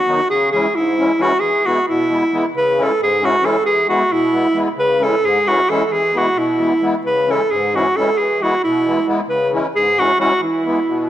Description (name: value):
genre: balkan folk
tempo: 266 BPM (eighths)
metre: 5/8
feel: straight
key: unclear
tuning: A4 = 438 Hz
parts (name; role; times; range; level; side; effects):
- clear alto saxophone; melody; 0.0-11.1 s; E4 to B4; -15 LUFS; right 1 dB; analog delay
- musette accordion; accompaniment; 0.1-11.1 s; G#2 to E4; -20 LUFS; left 2 dB; none
room: moderate recital hall reverb, RT60 1.7 s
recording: none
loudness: -14 LUFS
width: side -12 dB against mid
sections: 0.0-2.5 A section; 2.5-11.1 B section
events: none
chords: 0.3 C#m; 1.4 E; 2.5 C#m; 3.7 E; 4.8 C#m; 5.9 E; 7.0 C#m; 8.2 E; 9.3 C#m; 10.4 E